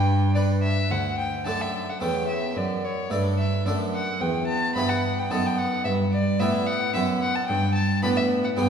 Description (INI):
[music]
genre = classical, baroque-style sonata movement with continuo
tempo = 110 BPM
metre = 3/4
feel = straight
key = D major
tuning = A4 = 441 Hz
[part]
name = rich violin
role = melody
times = 0.0-8.7 s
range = C#5 to B5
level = -28 LUFS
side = left 2 dB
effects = none
[part]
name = harpsichord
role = accompaniment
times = 0.0-8.7 s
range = D2 to B4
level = -25 LUFS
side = right 2 dB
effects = none
[part]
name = warm cello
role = bass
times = 0.0-8.7 s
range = D2 to A2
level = -26 LUFS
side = equal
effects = none
[sound]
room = wet concert hall reverb, RT60 1.9 s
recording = recorded in a church or concert hall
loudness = -22 LUFS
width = side -7 dB against mid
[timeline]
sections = 0.9-8.7 A section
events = none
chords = 0.0 G; 0.9 D; 2.0 A7/E; 2.6 D/F#; 4.2 Em; 5.3 B7/F#; 5.8 Em/G; 7.5 G